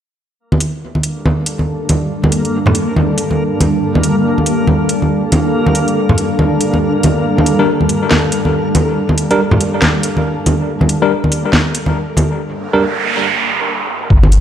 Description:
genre	deep dubstep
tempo	140 BPM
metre	4/4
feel	swing 61% on 16ths, half-time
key	G minor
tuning	A4 = 440 Hz
part	granular cloud pad	sustained chords	1.2-14.4 s	G3 to A4	-18 LUFS	equal	built-in reverb
part	backwards swelling texture	texture	1.4-14.4 s	Bb3	-22 LUFS	left 1 dB	built-in reverb
part	congas	percussion	0.5-14.3 s	none	-15 LUFS	equal	none
part	garage drum kit	drums	0.6-14.4 s	hi-hat, snare drum	-18 LUFS	equal	studio reverb
part	tine electric piano	stabs	7.6-12.8 s	G3 to Bb4	-17 LUFS	left 2 dB	medium stereo tremolo, dub echo
part	noise sweep	sound effects	12.6-14.1 s	none	-17 LUFS	right 5 dB	none
part	saturated sub bass	bass	14.1-14.4 s	G1	-9 LUFS	equal	none
part	electronic kick drum	drums	14.1-14.2 s	none	-10 LUFS	equal	studio reverb
room	light reverb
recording	dry, gritty hardware recording, cassette tape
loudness	-12 LUFS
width	side -9 dB against mid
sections	0.4-14.1 A section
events	break 12.4-14.1; noise sweep 12.6-14.1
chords	0.4 Gm

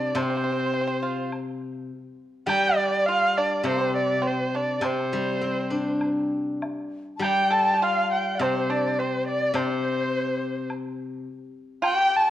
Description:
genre	chinese traditional, Chinese chamber ensemble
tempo	103 BPM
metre	4/4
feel	rubato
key	unclear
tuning	A4 = 439 Hz
part	dark erhu	melody	0.0-12.3 s	C5 to A5	-25 LUFS	right 1 dB	none
part	pipa	second line	0.0-12.3 s	C4 to A4	-30 LUFS	right 4 dB	none
part	steel-string zither	accompaniment	0.0-11.3 s	C3 to D4	-28 LUFS	left 2 dB	none
part	woodblock	percussion	0.2-12.0 s	none	-36 LUFS	left 1 dB	none
part	bright large dizi	second line	7.2-12.3 s	C5 to A5	-28 LUFS	left 5 dB	none
room	moderate recital hall reverb, RT60 1.4 s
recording	worn, warbling old tape, cassette tape, warbly pitch drift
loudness	-22 LUFS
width	side -12 dB against mid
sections	0.0-12.3 A section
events	none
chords	none

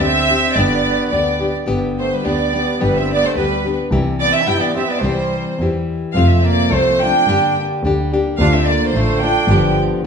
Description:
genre	mexican folk, mariachi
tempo	108 BPM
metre	2/4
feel	swing 54% on 8ths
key	C major, F major from 6.2 s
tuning	A4 = 440 Hz
part	rich studio violin section	melody	0.0-9.8 s	B4 to G5	-17 LUFS	right 1 dB	none
part	mellow trumpet	second line	0.0-9.8 s	G3 to E4	-24 LUFS	right 4 dB	none
part	nylon-string guitar	accompaniment	0.0-10.1 s	F2 to G4	-20 LUFS	left 3 dB	none
part	bright double bass	bass	0.0-10.1 s	G1 to G2	-20 LUFS	right 1 dB	none
room	wet large studio reverb, RT60 0.9 s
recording	band playing live in one room, nothing above 10.5 kHz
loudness	-14 LUFS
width	side -6 dB against mid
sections	0.0-6.2 A section; 6.2-10.1 B section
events	none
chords	0.0 Gsus4; 0.6 G; 3.9 C; 6.2 F; 7.3 Gm; 8.4 Dm; 9.5 G7

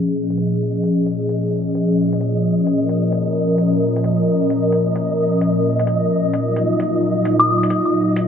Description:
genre	future garage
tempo	131 BPM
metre	4/4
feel	swing 67% on 16ths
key	Bb minor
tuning	A4 = 440 Hz
part	airy breathy pad	sustained chords	0.0-8.3 s	Bb2 to Bb4	-16 LUFS	left 1 dB	chorus
part	flickering grainy texture	texture	0.5-8.3 s	Eb5	-26 LUFS	right 1 dB	built-in reverb
part	electronic hi-hat	drums	0.3-8.3 s	none	-36 LUFS	left 2 dB	low-pass filter on perc, low-pass filter on hats, low-pass filter on snare
part	soft synth bell	melody	7.4-7.6 s	Eb6	-18 LUFS	left 2 dB	chorus, phaser, tape echo
room	wet scoring stage reverb, RT60 1.6 s, digital ambience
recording	vinyl crackle, low-pass filter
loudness	-16 LUFS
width	side -8 dB against mid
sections	0.0-8.3 A section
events	filter sweep on analog synth pad 0.0-8.3; filter sweep 0.0-8.3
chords	0.0 Bbm7; 6.3 Ebmadd9/Bb

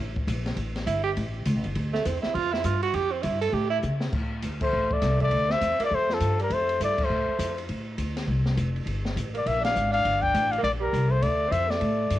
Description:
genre	jazz, small-group swing and bop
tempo	203 BPM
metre	4/4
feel	swing 62% on 8ths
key	D minor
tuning	A4 = 440 Hz
part	upright bass	bass	0.0-12.2 s	F1 to C#3	-28 LUFS	equal	none
part	open jazz drum kit	drums	0.2-12.2 s	crash cymbal, hi-hat, kick drum, ride cymbal, snare drum	-34 LUFS	equal	cassette tape
part	mellow tenor saxophone	second line	0.9-12.2 s	F3 to A4	-29 LUFS	right 6 dB	cassette tape
part	mellow trumpet	melody	4.6-12.2 s	A4 to G5	-25 LUFS	left 3 dB	cassette tape
room	light reverb, small room ambience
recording	home recording on cassette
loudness	-23 LUFS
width	side -14 dB against mid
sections	0.0-4.1 A section; 4.1-12.2 B section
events	tenor saxophone solo 0.0-4.1; drum fill 3.8; band accent 4.6, 6.9, 9.6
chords	0.0 A7(no3); 1.8 Dm; 3.5 A; 4.1 Dm7; 8.9 Gm7; 11.2 Dm7

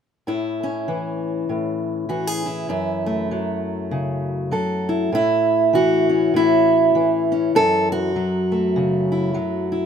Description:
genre	folk, solo fingerstyle acoustic guitar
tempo	99 BPM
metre	4/4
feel	swing 59% on 8ths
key	A major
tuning	A4 = 440 Hz
part	fingerpicked steel-string acoustic guitar	solo	0.3-9.9 s	F#2 to A4	-18 LUFS	equal	none
room	moderate studio reverb, RT60 0.5 s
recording	band playing live in one room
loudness	-18 LUFS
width	side -7 dB against mid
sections	0.3-5.1 A section; 5.1-9.9 B section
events	none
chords	0.3 A; 2.7 F#m7; 5.1 A; 7.5 F#m7

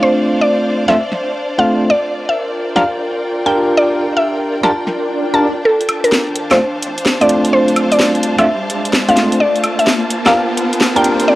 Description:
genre	UK garage, two-step garage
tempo	128 BPM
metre	4/4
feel	swing 66% on 16ths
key	D minor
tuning	A4 = 440 Hz
part	mallet-like synth pluck	melody	0.0-11.4 s	A4 to A5	-16 LUFS	equal	chorus, cassette tape, analog delay
part	dark studio violin section	sustained chords	0.0-11.4 s	D5 to A5	-28 LUFS	right 1 dB	low-pass filter, cassette tape
part	bell-like tine electric piano	stabs	0.0-11.4 s	A3 to Bb4	-17 LUFS	equal	medium stereo tremolo, low-pass filter, cassette tape, analog delay
part	rich studio string section	texture	0.0-11.4 s	Bb3 to G5	-21 LUFS	left 1 dB	cassette tape
part	house drum kit	drums	0.9-11.3 s	hi-hat, snare drum, woodblock	-17 LUFS	equal	small room reverb
part	swell and riser	sound effects	4.8-11.4 s	none	-22 LUFS	equal	none
room	moderate spring reverb, RT60 2.6 s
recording	home recording on cassette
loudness	-12 LUFS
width	side -17 dB against mid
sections	0.0-5.7 A section; 5.7-11.4 B section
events	swell 4.8-5.7; build-up 5.7-11.4; riser 5.7-11.4; filter sweep on tine electric piano 5.7-11.4; filter sweep on synth pluck 5.7-11.4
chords	0.0 Dm7; 1.9 Gm7; 5.7 Dm7; 9.4 Gm7

